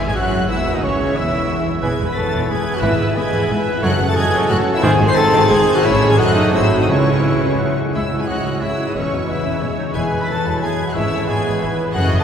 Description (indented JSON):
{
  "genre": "classical",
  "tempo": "179 BPM",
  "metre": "3/4",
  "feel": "rubato",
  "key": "C# minor",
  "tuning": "A4 = 440 Hz",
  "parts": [
    { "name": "mellow hollow concert flute", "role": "second line", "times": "0.0-12.2 s", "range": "C#5 to B#5", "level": "-25 LUFS", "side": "left 1 dB", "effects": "none" },
    { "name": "rich studio violin section", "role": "second line", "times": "0.0-12.2 s", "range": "B4 to B5", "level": "-28 LUFS", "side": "left 3 dB", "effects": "none" },
    { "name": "warm oboe", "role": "second line", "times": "0.0-12.2 s", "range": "B4 to G#5", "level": "-30 LUFS", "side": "right 1 dB", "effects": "none" },
    { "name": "mellow bassoon", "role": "accompaniment", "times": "0.0-12.2 s", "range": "C#3 to B3", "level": "-28 LUFS", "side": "right 2 dB", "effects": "none" },
    { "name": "rich symphonic viola section", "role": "accompaniment", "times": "0.0-12.2 s", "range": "D#3 to D#5", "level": "-25 LUFS", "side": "right 2 dB", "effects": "none" },
    { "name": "mellow French horn section", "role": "sustained chords", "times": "0.0-12.1 s", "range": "G#3 to B#4", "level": "-27 LUFS", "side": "left 1 dB", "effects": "none" },
    { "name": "mellow trombone section", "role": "sustained chords", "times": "0.0-7.8 s", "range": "B#2 to C#4", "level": "-29 LUFS", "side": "right 2 dB", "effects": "none" },
    { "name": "concert harp", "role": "arpeggios", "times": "0.0-12.2 s", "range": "F#2 to C#5", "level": "-26 LUFS", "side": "left 4 dB", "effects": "none" },
    { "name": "clear trumpet", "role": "stabs", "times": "0.0-12.2 s", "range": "C#4 to G#5", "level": "-25 LUFS", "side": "right 2 dB", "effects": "none" },
    { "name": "rich symphonic cello section", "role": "bass", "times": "0.0-12.2 s", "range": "C#2 to C#3", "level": "-24 LUFS", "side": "right 1 dB", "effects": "none" },
    { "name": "rich symphonic double bass section", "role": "bass", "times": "0.0-12.2 s", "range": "E1 to C#2", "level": "-24 LUFS", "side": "equal", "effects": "none" },
    { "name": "clear symphonic violin section", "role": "melody", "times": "0.1-12.2 s", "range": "C#6 to B#6", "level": "-27 LUFS", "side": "left 2 dB", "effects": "none" },
    { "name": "mellow clarinet", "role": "second line", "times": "0.1-12.2 s", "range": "B3 to B#4", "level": "-26 LUFS", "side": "equal", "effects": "none" },
    { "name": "timpani", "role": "percussion", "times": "2.8-8.4, 11.0-11.4 s", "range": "G#2 to C#3", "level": "-28 LUFS", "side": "left 1 dB", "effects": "none" }
  ],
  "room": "wet cathedral reverb, RT60 6.6 s",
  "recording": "heard from further back in the room",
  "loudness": "-15 LUFS",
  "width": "side -8 dB against mid",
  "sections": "0.0-7.9 A section; 7.9-12.2 A section",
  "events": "none",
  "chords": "0.0 C#m; 1.8 E; 2.8 E/G#; 3.8 F#m; 4.8 G#; 5.8 Amaj7; 6.2 D#dim/F#; 6.5 G#7; 6.9 C#m; 9.0 C#m/E; 10.0 E; 11.0 E/G#"
}